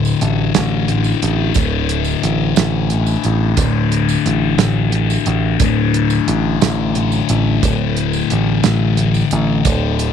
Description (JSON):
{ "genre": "psychedelic rock", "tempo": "59 BPM (dotted quarters)", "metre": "6/8", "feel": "straight", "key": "unclear", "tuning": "A4 = 440 Hz", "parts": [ { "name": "thick fuzz guitar", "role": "riff", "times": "0.0-10.1 s", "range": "D2 to D3", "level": "-17 LUFS", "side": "left 9 dB", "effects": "distortion, phaser" }, { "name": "picked electric bass", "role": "bass", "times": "0.0-10.1 s", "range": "D1 to A1", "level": "-17 LUFS", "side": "right 2 dB", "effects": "none" }, { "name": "tambourine", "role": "percussion", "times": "0.0-9.8 s", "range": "none", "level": "-30 LUFS", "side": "right 20 dB", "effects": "none" }, { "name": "damped 70s drum kit", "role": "drums", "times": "0.2-10.1 s", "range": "hi-hat, kick drum, snare drum", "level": "-18 LUFS", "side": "right 6 dB", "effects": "none" } ], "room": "small room ambience", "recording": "1960s-style stereo with parts hard left and right", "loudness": "-13 LUFS", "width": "side -8 dB against mid", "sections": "0.0-10.1 A section", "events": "none", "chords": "0.0 D5", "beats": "0.54 | 1.55 2.56 | 3.57 4.59 | 5.60 6.61 | 7.62 8.64 | 9.65" }